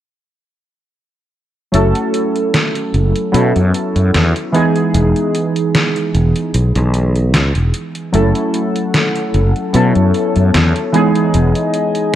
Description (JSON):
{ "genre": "vaporwave", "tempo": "75 BPM", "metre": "4/4", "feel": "swing 53% on 16ths", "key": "E major", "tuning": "A4 = 440 Hz", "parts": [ { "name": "warbly lo-fi synth keys", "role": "accompaniment", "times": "1.7-12.2 s", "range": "E3 to A4", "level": "-15 LUFS", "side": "equal", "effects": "lush chorus, analog delay" }, { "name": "fretless electric bass", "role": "bass", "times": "1.7-11.5 s", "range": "E1 to B2", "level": "-13 LUFS", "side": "equal", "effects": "tube saturation" }, { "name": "detuned 8-bit digital drum machine", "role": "drums", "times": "1.7-12.1 s", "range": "hi-hat, snare drum", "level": "-18 LUFS", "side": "equal", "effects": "gated reverb" }, { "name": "warbly tape-like pad", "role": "sustained chords", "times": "8.1-12.2 s", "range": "A4 to A5", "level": "-23 LUFS", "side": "equal", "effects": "chorus, built-in reverb, vintage 12-bit sampler grit" } ], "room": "light reverb", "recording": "cassette tape", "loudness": "-12 LUFS", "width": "side -12 dB against mid", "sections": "1.7-12.2 A section", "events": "none", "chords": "1.7 F#m7; 3.3 B9sus4; 4.5 Emaj7; 8.1 F#m7; 9.7 B9sus4; 10.9 Emaj7", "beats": "| 1.74 2.54 3.34 4.14 | 4.94 5.74 6.54 7.34 | 8.14 8.94 9.74 10.54 | 11.34 12.14" }